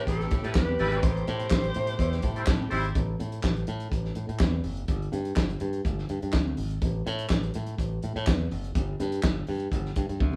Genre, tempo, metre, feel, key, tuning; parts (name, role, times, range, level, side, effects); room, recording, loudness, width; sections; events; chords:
disco; 124 BPM; 4/4; straight; A dorian; A4 = 439 Hz
raspy alto saxophone; melody; 0.0-2.7 s; A4 to C5; -34 LUFS; equal
clear studio string section; sustained chords; 0.0-2.9 s; B2 to G4; -43 LUFS; equal
modern bright fingered electric bass; bass; 0.0-10.4 s; F#1 to A2; -32 LUFS; equal
warm soul drum kit; drums; 0.1-10.4 s; handclaps, hi-hat, kick drum, snare drum, toms; -30 LUFS; equal
clear horn section; stabs; 0.4-2.9 s; G3 to C5; -34 LUFS; equal
congas; percussion; 0.6-10.4 s; -41 LUFS; equal
moderate studio reverb, RT60 0.7 s; band playing live in one room, small room ambience; -28 LUFS; mono
0.0-3.0 A section; 3.0-10.4 B section
drum fill 10.2
0.0 Am9; 3.0 A5; 4.9 G5; 6.8 A5; 8.8 G5